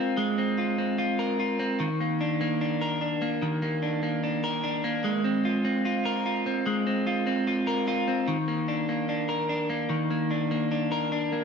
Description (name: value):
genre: dream pop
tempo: 74 BPM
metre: 4/4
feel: straight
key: unclear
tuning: A4 = 443 Hz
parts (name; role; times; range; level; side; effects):
- electric guitar at the edge of break-up; solo; 0.0-11.4 s; Eb3 to Bb4; -25 LUFS; equal; wide subtle chorus
room: moderate lush hall reverb, RT60 1.6 s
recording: none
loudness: -25 LUFS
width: side -6 dB against mid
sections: 0.0-11.4 A section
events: none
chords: 0.0 Ab69; 1.8 Eb5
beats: 0.17 0.98 | 1.80 2.61 3.42 4.23 | 5.04 5.85 6.66 7.47 | 8.28 9.09 9.90 10.71